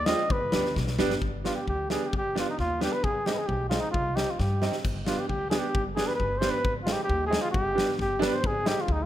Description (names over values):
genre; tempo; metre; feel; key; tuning
klezmer; 133 BPM; 2/4; straight; G phrygian dominant; A4 = 440 Hz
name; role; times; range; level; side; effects
breathy cornet; melody; 0.0-9.1 s; Eb4 to Eb5; -29 LUFS; equal; none
upright bass; bass; 0.0-9.0 s; G1 to G2; -33 LUFS; equal; none
bright upright piano; accompaniment; 0.1-8.8 s; G3 to F4; -31 LUFS; right 3 dB; none
big rock drum kit; drums; 0.1-9.0 s; crash cymbal, kick drum, snare drum; -31 LUFS; left 2 dB; none
room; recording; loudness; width
moderate recital hall reverb, RT60 1.8 s; none; -25 LUFS; side -12 dB against mid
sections
0.0-1.2 A section; 1.2-8.4 B section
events
cornet solo 0.0-1.2; drum fill 0.8-1.2, 4.4-4.8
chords
0.3 G; 3.0 Ab; 3.9 Cm; 4.8 G; 6.6 Ab; 7.5 G; 8.4 Ab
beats
| 0.30 0.76 | 1.22 1.67 | 2.13 2.58 | 3.04 3.49 | 3.94 4.39 | 4.85 5.30 | 5.75 6.20 | 6.64 7.09 | 7.54 7.98 | 8.43 8.87